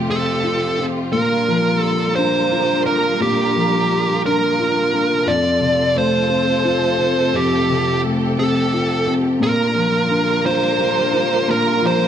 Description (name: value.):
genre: six-eight pop ballad.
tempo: 58 BPM (dotted quarters).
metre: 6/8.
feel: straight.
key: Bb major.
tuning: A4 = 440 Hz.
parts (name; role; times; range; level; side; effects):
felt-muted upright piano; accompaniment; 0.0-12.1 s; F2 to G4; -20 LUFS; left 2 dB; none.
warm studio string section; sustained chords; 0.0-12.1 s; C3 to Bb4; -23 LUFS; right 2 dB; none.
fuzz lead guitar; melody; 0.1-12.1 s; G4 to D5; -18 LUFS; right 2 dB; distortion.
room: wet large studio reverb, RT60 1.1 s.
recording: band playing live in one room.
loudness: -15 LUFS.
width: side -9 dB against mid.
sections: 0.0-12.1 A section.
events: none.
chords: 0.0 F; 1.1 Bb6; 5.3 F; 9.4 Bb6.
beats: 0.10 | 1.13 2.17 | 3.21 4.24 | 5.28 6.31 | 7.34 8.38 | 9.41 10.45 | 11.48.